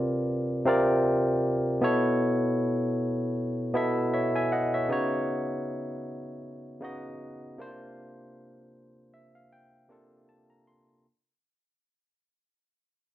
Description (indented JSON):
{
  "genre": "R&B",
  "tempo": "78 BPM",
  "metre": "4/4",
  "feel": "swing 56% on 16ths",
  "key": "unclear",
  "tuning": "A4 = 440 Hz",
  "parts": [
    { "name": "barky tine electric piano", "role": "solo", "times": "0.0-11.1 s", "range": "B2 to C6", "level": "-26 LUFS", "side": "equal", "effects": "overdrive" }
  ],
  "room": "light reverb",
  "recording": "none",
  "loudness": "-24 LUFS",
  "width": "side -13 dB against mid",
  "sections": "0.0-11.1 A section",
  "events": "fade-out 0.0-11.1; tine electric piano fill 8.7-11.1",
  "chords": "0.0 C9sus4; 1.8 B9sus4; 4.9 Db9sus4; 7.6 C9sus4"
}